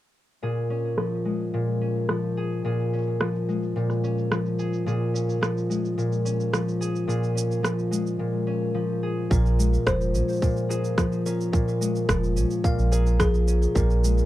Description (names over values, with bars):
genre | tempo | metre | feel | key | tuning
folktronica | 108 BPM | 4/4 | straight | Bb minor | A4 = 440 Hz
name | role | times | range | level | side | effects
concert harp | arpeggios | 0.4-14.3 s | Bb2 to Ab4 | -24 LUFS | left 1 dB | low-pass filter, tape echo
electronic shaker and rim click | drums | 0.4-14.3 s | none | -29 LUFS | right 2 dB | low-pass filter on perc, low-pass filter on snare, low-pass filter on room
music box | second line | 9.3-14.0 s | F4 to F5 | -31 LUFS | left 2 dB | tape echo
warm sub bass | bass | 9.3-14.2 s | F1 to Bb1 | -22 LUFS | right 1 dB | none
electronic kick drum | drums | 9.3-13.9 s | none | -23 LUFS | right 1 dB | none
room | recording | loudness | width
light reverb | dry, close 1970s-style studio recording | -22 LUFS | side -14 dB against mid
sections
0.4-9.3 A section; 9.3-14.3 B section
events
filter sweep on drum 0.4-9.3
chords
0.4 Bbm7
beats
| 0.42 0.98 1.53 2.09 | 2.65 3.20 3.76 4.31 | 4.87 5.42 5.98 6.53 | 7.09 7.64 8.20 8.76 | 9.31 9.87 10.42 10.98 | 11.53 12.09 12.64 13.20 | 13.76